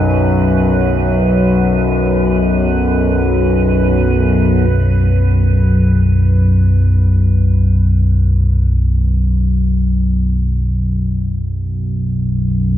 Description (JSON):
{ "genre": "dark ambient drone", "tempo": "free time", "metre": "none", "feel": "none", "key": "unclear", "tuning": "A4 = 440 Hz", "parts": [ { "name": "analog drone", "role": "drone", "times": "0.0-12.8 s", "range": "B1 to F#2", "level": "-12 LUFS", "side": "equal", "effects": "chorus" }, { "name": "icy glass pad", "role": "texture", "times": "0.0-4.7 s", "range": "B4", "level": "-24 LUFS", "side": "right 6 dB", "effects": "chorus, built-in reverb" } ], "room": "wet cathedral reverb, RT60 6.8 s", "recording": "cassette tape", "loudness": "-12 LUFS", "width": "side -12 dB against mid", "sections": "0.0-4.7 A section; 4.7-12.8 B section", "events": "filter sweep on synth drone 4.7-12.8", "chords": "0.0 B5" }